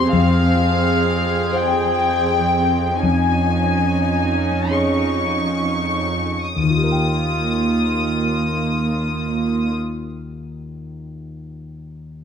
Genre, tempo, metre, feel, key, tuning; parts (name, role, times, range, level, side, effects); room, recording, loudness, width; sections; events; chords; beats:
cinematic; 31-44 BPM (dotted quarters); 6/8; rubato; Eb major; A4 = 439 Hz
rich studio violin section; melody; 0.0-9.7 s; F5 to Eb6; -22 LUFS; left 4 dB
dark concert grand piano; accompaniment; 0.0-12.2 s; Eb2 to G5; -22 LUFS; left 2 dB
warm studio viola section; accompaniment; 0.0-9.7 s; Bb3 to Ab4; -23 LUFS; right 2 dB
warm studio cello section; bass; 0.0-9.7 s; Eb2 to F2; -24 LUFS; right 4 dB
light reverb; close, detailed microphones; -16 LUFS; side -7 dB against mid
0.0-6.6 A section; 6.6-10.3 B section
slowing down 0.0-6.6
0.1 Fm; 3.0 Dbadd9/F; 6.6 Ebadd9
| 0.11 1.53 | 3.03 4.71 | 6.57 8.44